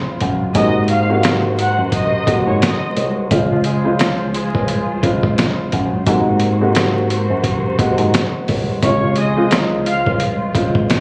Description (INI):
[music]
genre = hip hop, boom-bap hip-hop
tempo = 87 BPM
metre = 4/4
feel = swing 56% on 16ths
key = Db major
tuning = A4 = 439 Hz
[part]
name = dark upright piano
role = accompaniment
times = 0.0-11.0 s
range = C3 to Gb4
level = -22 LUFS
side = equal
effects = cassette tape, high-pass filter, low-pass filter
[part]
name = warm studio string section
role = sustained chords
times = 0.0-11.0 s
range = F3 to C5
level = -28 LUFS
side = equal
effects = high-pass filter, low-pass filter
[part]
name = bell-like tine electric piano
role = bass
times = 0.2-10.9 s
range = C2 to Ab2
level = -22 LUFS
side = equal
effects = none
[part]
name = trip hop sampler-style drum kit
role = drums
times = 0.2-11.0 s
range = hi-hat, kick drum, snare drum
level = -22 LUFS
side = equal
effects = none
[part]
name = dark studio violin section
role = melody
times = 0.5-2.9, 8.8-10.0 s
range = Db5 to Gb6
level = -23 LUFS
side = equal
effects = high-pass filter, low-pass filter, tape echo
[part]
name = mellow saxophone section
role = stabs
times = 3.5-10.5 s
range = Eb3 to Ab4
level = -27 LUFS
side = equal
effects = high-pass filter, low-pass filter, tape echo
[sound]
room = small room ambience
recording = recorded on a phone in the room, club reverb, vinyl crackle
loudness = -17 LUFS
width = mono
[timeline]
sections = 0.0-11.0 A section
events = none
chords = 0.0 Dbmaj7; 0.6 Ab9; 3.3 Dbmaj7; 6.1 Ab9; 8.8 Dbmaj7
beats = | 0.55 1.24 1.93 2.62 | 3.31 4.00 4.69 5.38 | 6.07 6.76 7.45 8.14 | 8.83 9.52 10.21 10.89